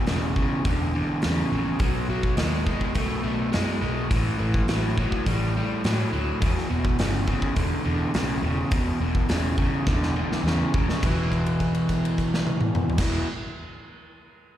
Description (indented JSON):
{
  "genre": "blues rock power trio and southern rock",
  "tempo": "104 BPM",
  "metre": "4/4",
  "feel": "straight",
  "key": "unclear",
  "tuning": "A4 = 439 Hz",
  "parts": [
    { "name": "crunchy overdriven guitar", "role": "riff", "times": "0.0-13.3 s", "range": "E2 to A3", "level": "-25 LUFS", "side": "equal", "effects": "none" },
    { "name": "vintage muted picked electric bass", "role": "bass", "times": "0.1-13.2 s", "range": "E1 to A2", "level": "-28 LUFS", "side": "equal", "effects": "none" },
    { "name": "big rock drum kit", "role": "drums", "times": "0.1-13.1 s", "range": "crash cymbal, hi-hat, kick drum, snare drum, toms", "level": "-27 LUFS", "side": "equal", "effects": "none" }
  ],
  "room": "small room reverb",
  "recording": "live gig heard through the venue's PA, recital hall reverb",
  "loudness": "-22 LUFS",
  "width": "side -12 dB against mid",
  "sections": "0.0-11.0 A section; 11.0-13.3 B section",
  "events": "drum fill 9.9-11.0; held note 11.0-13.0",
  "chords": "0.0 E7(no3); 1.8 B7; 4.1 A5; 6.4 E7(no3); 11.0 E5"
}